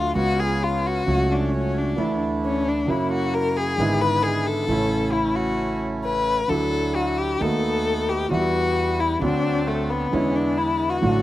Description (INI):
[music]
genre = tango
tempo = 133 BPM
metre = 4/4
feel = rubato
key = D major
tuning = A4 = 436 Hz
[part]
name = warm violin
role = second line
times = 0.0-11.2 s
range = A3 to B4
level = -23 LUFS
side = left 4 dB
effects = none
[part]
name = warm concert grand piano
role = accompaniment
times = 0.0-11.2 s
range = G#1 to F#4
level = -24 LUFS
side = right 2 dB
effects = none
[part]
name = bandoneon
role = stabs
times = 0.0-11.2 s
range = F#3 to F#4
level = -31 LUFS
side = right 4 dB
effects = none
[part]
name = upright bass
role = bass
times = 0.0-11.2 s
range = F#1 to E2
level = -32 LUFS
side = right 1 dB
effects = none
[sound]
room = little or no reverb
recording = recorded outdoors, with no room sound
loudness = -20 LUFS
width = side -14 dB against mid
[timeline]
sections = 0.0-11.2 A section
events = violin solo 0.0-11.2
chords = 0.2 C#7; 1.1 F#m/C#; 2.0 Dsus2; 2.9 F#7; 3.8 E7/G#; 4.7 A; 6.5 Dadd9; 7.4 B7/D#; 8.3 Em; 9.2 D7; 10.1 E7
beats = 0.16 0.62 | 1.07 1.52 1.98 2.43 | 2.88 3.33 3.78 4.24 | 4.69 5.14 5.59 6.05 | 6.50 6.96 7.41 7.86 | 8.31 8.77 9.22 9.67 | 10.12 10.57 11.03